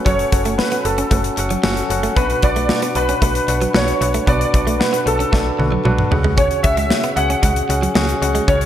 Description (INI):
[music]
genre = 1980s-style pop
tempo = 114 BPM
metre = 4/4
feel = straight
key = unclear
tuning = A4 = 442 Hz
[part]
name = clear concert grand piano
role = melody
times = 0.0-8.7 s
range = A4 to F#5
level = -21 LUFS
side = equal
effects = ensemble chorus
[part]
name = tine electric piano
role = accompaniment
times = 0.0-8.7 s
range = B2 to G#5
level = -21 LUFS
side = left 2 dB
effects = medium stereo tremolo
[part]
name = direct-recorded clean electric guitar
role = riff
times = 0.1-8.6 s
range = F#3 to C#4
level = -25 LUFS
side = right 4 dB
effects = lush chorus
[part]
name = slap-like FM bass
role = bass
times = 0.1-8.7 s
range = F#1 to C#2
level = -22 LUFS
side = equal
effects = none
[part]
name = modern studio drum kit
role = drums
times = 0.1-8.7 s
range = hi-hat, kick drum, snare drum, toms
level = -19 LUFS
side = equal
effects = gated reverb
[sound]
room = moderate plate reverb, RT60 2.4 s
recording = bright 1980s-style digital production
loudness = -15 LUFS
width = side -11 dB against mid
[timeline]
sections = 0.0-8.7 A section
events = tine electric piano fill 1.4-2.2; drum fill 5.3-6.4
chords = 0.0 F#m; 2.2 Bm; 6.1 C#sus4